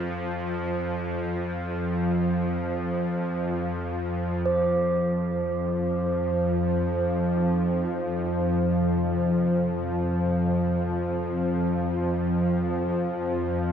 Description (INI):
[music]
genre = dark ambient drone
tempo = free time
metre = none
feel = none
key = unclear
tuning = A4 = 440 Hz
[part]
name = deep dark ambient pad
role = sustained chords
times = 0.0-4.5 s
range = none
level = barely audible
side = none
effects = none
[part]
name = bowed-like drone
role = drone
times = 0.0-13.7 s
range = F2 to F3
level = -24 LUFS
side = equal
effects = built-in reverb
[part]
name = quartz singing bowl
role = texture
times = 0.0-13.7 s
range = C5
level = -32 LUFS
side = right 3 dB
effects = none
[part]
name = gamelan-type bronze metallophone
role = arpeggios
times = 7.4-13.7 s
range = C3 to Eb4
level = -46 LUFS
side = equal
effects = none
[sound]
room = wet huge ambient reverb, RT60 8.4 s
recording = dark, warm production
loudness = -24 LUFS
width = side -8 dB against mid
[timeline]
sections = 0.0-4.5 A section; 4.5-13.7 B section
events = none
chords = 0.0 Fsus2; 4.5 F5